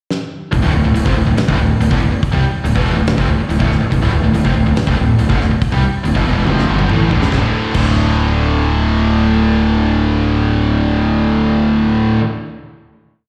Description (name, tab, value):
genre	hard rock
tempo	141 BPM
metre	4/4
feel	straight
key	D minor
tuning	A4 = 441 Hz
part	big rock drum kit	drums	0.1-7.9 s	crash cymbal, hi-hat, kick drum, snare drum, toms	-21 LUFS	equal	none
part	tight distorted guitar	riff	0.5-12.2 s	D2 to A3	-21 LUFS	equal	distortion
part	tight distorted guitar	riff	0.5-12.2 s	D2 to A3	-20 LUFS	equal	distortion, slapback echo
part	fuzz fingered electric bass	bass	0.5-12.2 s	D1 to C2	-18 LUFS	equal	overdrive
room	light reverb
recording	live gig heard through the venue's PA, recital hall reverb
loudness	-15 LUFS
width	mono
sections	0.0-0.5 pickup bar; 0.5-7.3 riff; 7.3-10.7 final chord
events	drum fill 0.1-0.5, 6.5-7.3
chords	0.0 N.C.; 0.5 Dm; 7.3 D5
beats	0.10 | 0.53 0.95 1.37 1.80 | 2.22 2.65 3.07 3.50 | 3.92 4.34 4.77 5.20 | 5.62 6.05 6.47 6.90 | 7.32 7.75 8.18 8.60 | 9.03 9.46 9.88 10.31